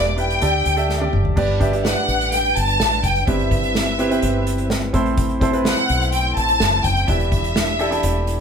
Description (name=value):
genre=piano-driven pop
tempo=126 BPM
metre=4/4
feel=straight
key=G major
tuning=A4 = 441 Hz
part: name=warm studio violin section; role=melody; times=0.0-8.4 s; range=D5 to A5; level=-20 LUFS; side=left 1 dB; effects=none
part: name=clear concert grand piano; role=accompaniment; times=0.0-8.4 s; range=G2 to E5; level=-23 LUFS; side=right 2 dB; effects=none
part: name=deep dub fingered electric bass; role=bass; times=0.0-8.4 s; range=E1 to D2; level=-23 LUFS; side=equal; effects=none
part: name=unplugged drum kit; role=drums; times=0.2-8.4 s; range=crash cymbal, hi-hat, kick drum, snare drum, toms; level=-23 LUFS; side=equal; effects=none
part: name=sweeping resonant pad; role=sustained chords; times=1.4-8.4 s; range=E3 to B4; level=-30 LUFS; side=left 3 dB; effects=chorus
room=moderate studio reverb, RT60 0.7 s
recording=band playing live in one room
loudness=-16 LUFS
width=side -7 dB against mid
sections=0.0-1.4 A section; 1.4-8.4 B section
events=drum fill 0.9-1.4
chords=0.4 Dsus4; 1.4 G; 3.3 Cmaj7/G; 4.9 Am; 7.1 Em7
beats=0.42 0.89 | 1.37 1.85 2.32 2.80 | 3.28 3.75 4.23 4.71 | 5.18 5.66 6.13 6.61 | 7.09 7.56 8.04